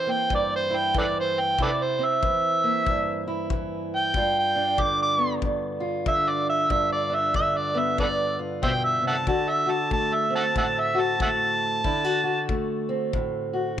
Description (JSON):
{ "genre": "acoustic country blues, solo or duo", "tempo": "94 BPM", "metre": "4/4", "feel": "swing 60% on 8ths", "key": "G mixolydian", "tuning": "A4 = 440 Hz", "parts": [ { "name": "overdriven harmonica", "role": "melody", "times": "0.0-12.5 s", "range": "A4 to D6", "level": "-23 LUFS", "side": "right 1 dB", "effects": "none" }, { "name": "fingerpicked steel-string acoustic guitar", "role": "accompaniment", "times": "0.0-13.8 s", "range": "G2 to F#4", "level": "-27 LUFS", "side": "equal", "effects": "none" }, { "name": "kick drum", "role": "drums", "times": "0.3-13.3 s", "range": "none", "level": "-29 LUFS", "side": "left 3 dB", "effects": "none" } ], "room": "moderate spring reverb, RT60 1.6 s, studio ambience", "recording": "1960s-style stereo", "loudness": "-22 LUFS", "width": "side -10 dB against mid", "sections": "0.0-13.8 A section", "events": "harmonica solo 0.0-13.8", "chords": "0.0 C7; 4.1 G7; 9.3 D7" }